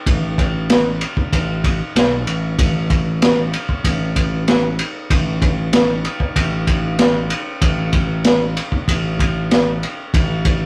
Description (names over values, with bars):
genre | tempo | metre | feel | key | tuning
psychedelic rock | 95 BPM | 4/4 | straight | unclear | A4 = 435 Hz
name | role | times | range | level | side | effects
overdriven picked electric bass | bass | 0.1-10.7 s | A1 to B1 | -24 LUFS | equal | none
vintage drum kit | drums | 0.1-10.6 s | kick drum, ride cymbal, snare drum | -19 LUFS | equal | none
room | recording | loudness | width
light reverb | rough rehearsal-room recording, warm saturation | -18 LUFS | mono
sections
0.0-10.7 A section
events
none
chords
none